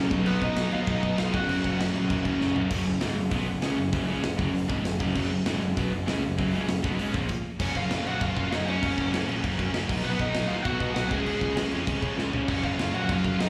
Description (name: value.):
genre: punk rock.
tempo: 196 BPM.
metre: 4/4.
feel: straight.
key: F# major.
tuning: A4 = 439 Hz.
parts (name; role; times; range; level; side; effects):
crunchy overdriven guitar; riff; 0.0-7.3, 12.5-13.5 s; F#2 to C#4; -33 LUFS; equal; slapback echo.
distorted electric guitar; riff; 0.0-13.5 s; F#2 to D#4; -33 LUFS; equal; distortion, slapback echo.
fuzz picked electric bass; bass; 0.0-13.5 s; F#1 to C#3; -32 LUFS; equal; overdrive.
big rock drum kit; drums; 0.1-13.5 s; crash cymbal, hi-hat, kick drum, snare drum, toms; -34 LUFS; equal; none.
smooth overdriven lead guitar; melody; 0.3-1.8, 7.6-13.5 s; B3 to G#5; -33 LUFS; equal; slapback echo.
room: studio reverb.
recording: live gig heard through the venue's PA, recital hall reverb.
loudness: -27 LUFS.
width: mono.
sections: 0.0-2.7 A section; 2.7-7.6 B section; 7.6-13.5 A section.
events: drum fill 2.4-2.7, 12.2-12.5; stop 7.3-7.6.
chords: 0.1 B; 1.3 F#; 9.9 B; 11.1 C#; 12.5 F#.